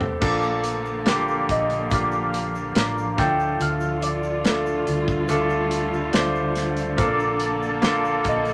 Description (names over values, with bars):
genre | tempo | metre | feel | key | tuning
pop ballad | 71 BPM | 4/4 | straight | unclear | A4 = 440 Hz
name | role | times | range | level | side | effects
warm concert grand piano | accompaniment | 0.0-8.5 s | A2 to C5 | -26 LUFS | equal | none
warm studio string section | sustained chords | 0.0-8.5 s | D3 to A4 | -32 LUFS | equal | none
modern studio drum kit | drums | 0.0-8.5 s | crash cymbal, hi-hat, kick drum, snare drum, toms | -27 LUFS | equal | none
hollow-body short-scale fingered electric bass | bass | 0.2-8.5 s | A1 to D2 | -32 LUFS | equal | none
egg shaker | percussion | 0.2-8.5 s | none | -54 LUFS | equal | none
soft struck synth lead | melody | 1.5-8.5 s | D5 to G5 | -29 LUFS | equal | chorus
room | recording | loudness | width
wet studio ambience, RT60 0.5 s | none | -23 LUFS | mono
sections
0.2-8.5 A section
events
break 0.0; drum fill 0.0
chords
0.2 Bbmaj7; 3.2 Dm; 7.0 Bbmaj7